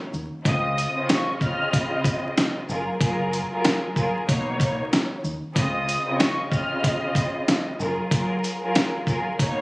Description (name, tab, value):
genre	hip hop, boom-bap hip-hop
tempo	94 BPM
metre	4/4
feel	swing 59% on 16ths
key	Db major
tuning	A4 = 442 Hz
part	warm studio string section	accompaniment	0.0-9.6 s	Cb3 to Eb5	-25 LUFS	equal	cassette tape, high-pass filter, low-pass filter
part	deep dub fingered electric bass	bass	0.1-7.9 s	Gb1 to Eb2	-28 LUFS	equal	none
part	dusty soul sampler-style drum kit	drums	0.1-9.6 s	hi-hat, kick drum, shaker, snare drum	-23 LUFS	equal	none
part	dark studio violin section	melody	0.5-7.0 s	Db6 to F6	-29 LUFS	equal	high-pass filter, low-pass filter, tape echo
room	little or no reverb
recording	recorded on a phone in the room, studio ambience, vinyl crackle, compression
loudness	-21 LUFS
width	side -23 dB against mid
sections	0.0-9.6 A section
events	break 0.0-0.5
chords	0.5 Dbmaj9; 2.7 Gbmaj9; 4.3 Cbmaj9; 5.6 Dbmaj9; 7.8 Gbmaj9